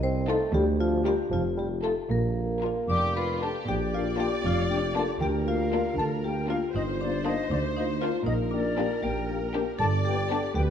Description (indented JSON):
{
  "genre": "cinematic, playful, whimsical film cue",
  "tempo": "78 BPM (dotted quarters)",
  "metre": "6/8",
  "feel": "straight",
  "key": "Bb major",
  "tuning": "A4 = 440 Hz",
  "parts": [
    { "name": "marimba with hard mallets", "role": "melody", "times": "0.0-10.7 s", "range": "D4 to D5", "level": "-31 LUFS", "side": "left 6 dB", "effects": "none" },
    { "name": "dark bassoon", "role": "accompaniment", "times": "0.0-3.4 s", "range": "F3 to C4", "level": "-30 LUFS", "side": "right 1 dB", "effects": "none" },
    { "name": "mellow tuba", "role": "bass", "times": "0.0-10.7 s", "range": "F1 to D2", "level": "-32 LUFS", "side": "right 3 dB", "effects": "none" },
    { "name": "rich studio double bass section", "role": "bass", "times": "0.0-10.7 s", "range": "F1 to D2", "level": "-33 LUFS", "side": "right 2 dB", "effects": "none" },
    { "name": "warm studio cello section", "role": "bass", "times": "0.0-10.7 s", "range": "D2 to D3", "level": "-34 LUFS", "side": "right 2 dB", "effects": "none" },
    { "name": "rich studio violin section", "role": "melody", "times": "0.3-10.5 s", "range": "F4 to Bb4", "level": "-38 LUFS", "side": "left 5 dB", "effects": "none" },
    { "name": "rich studio violin section", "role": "second line", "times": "0.3-10.5 s", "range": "Bb3 to G4", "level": "-36 LUFS", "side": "left 2 dB", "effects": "none" },
    { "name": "rich studio viola section", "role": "accompaniment", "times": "0.3-10.7 s", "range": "D4 to D5", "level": "-34 LUFS", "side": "left 1 dB", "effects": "none" },
    { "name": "concert flute", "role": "second line", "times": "2.9-10.6 s", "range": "D5 to D6", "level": "-33 LUFS", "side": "left 1 dB", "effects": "none" },
    { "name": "dark French horn section", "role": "sustained chords", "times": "3.9-10.4 s", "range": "Bb3 to G4", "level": "-37 LUFS", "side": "left 4 dB", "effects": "none" }
  ],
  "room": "moderate scoring stage reverb, RT60 1.5 s",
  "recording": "dark, warm production",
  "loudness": "-24 LUFS",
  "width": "side -8 dB against mid",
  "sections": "0.0-3.7 A section; 3.7-10.7 A section",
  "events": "none",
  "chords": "0.0 F7/C; 0.5 Bb/D; 1.3 F7; 2.1 Bb; 5.2 Bb/D; 6.7 Gm7; 8.3 Gm/Bb; 9.8 G"
}